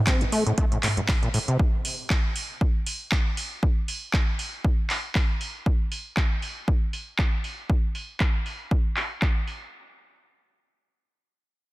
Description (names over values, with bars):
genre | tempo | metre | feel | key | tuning
acid house | 118 BPM | 4/4 | swing 56% on 16ths | A phrygian | A4 = 438 Hz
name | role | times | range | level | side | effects
overdriven acid bass | riff | 0.1-1.6 s | A1 to C4 | -26 LUFS | equal | sidechain pumping, tape echo
booming analog drum machine | drums | 0.1-9.6 s | handclaps, hi-hat, toms | -28 LUFS | right 1 dB | overdrive, low-pass filter on snare, low-pass filter on hats, low-pass filter on toms, low-pass filter on room
electronic kick drum | drums | 0.1-9.3 s | none | -23 LUFS | equal | none
room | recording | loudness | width
little or no reverb | dense, heavily limited modern master | -23 LUFS | side -19 dB against mid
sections
0.0-9.7 A section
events
none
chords
none